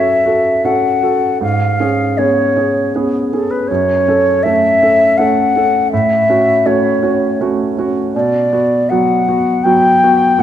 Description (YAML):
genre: classical, romantic duo for flute and grand piano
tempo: 80 BPM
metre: 3/4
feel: rubato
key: F# minor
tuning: A4 = 440 Hz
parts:
  - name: mellow concert flute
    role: melody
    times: 0.0-10.4 s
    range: A4 to G5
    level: -13 LUFS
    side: left 2 dB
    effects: none
  - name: warm concert grand piano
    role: accompaniment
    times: 0.0-10.4 s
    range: F#2 to A4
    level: -15 LUFS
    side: right 2 dB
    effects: none
room: wet scoring stage reverb, RT60 1.6 s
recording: minimal, uncompressed stereo recording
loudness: -11 LUFS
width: side -10 dB against mid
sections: 0.0-10.4 A section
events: none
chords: 0.0 F#m; 1.4 C#7/G#; 3.7 F#m; 5.9 F#m/A; 8.1 Bm